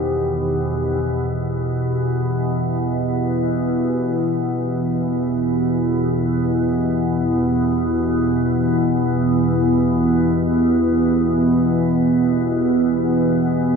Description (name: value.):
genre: dark ambient drone.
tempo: free time.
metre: none.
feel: none.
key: E minor.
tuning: A4 = 442 Hz.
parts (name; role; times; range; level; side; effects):
sweeping resonant pad; sustained chords; 0.0-13.8 s; Eb3 to C5; -18 LUFS; right 1 dB; chorus.
organ-like drone; drone; 0.0-13.8 s; E2 to B2; -21 LUFS; equal; ensemble chorus, built-in reverb, phaser.
room: wet spring reverb, RT60 2.5 s.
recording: none.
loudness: -17 LUFS.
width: side -5 dB against mid.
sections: 0.0-1.0 A section; 1.0-13.8 B section.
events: filter sweep on synth drone 0.0-1.0.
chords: 0.0 Cm; 1.0 Em.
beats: free time.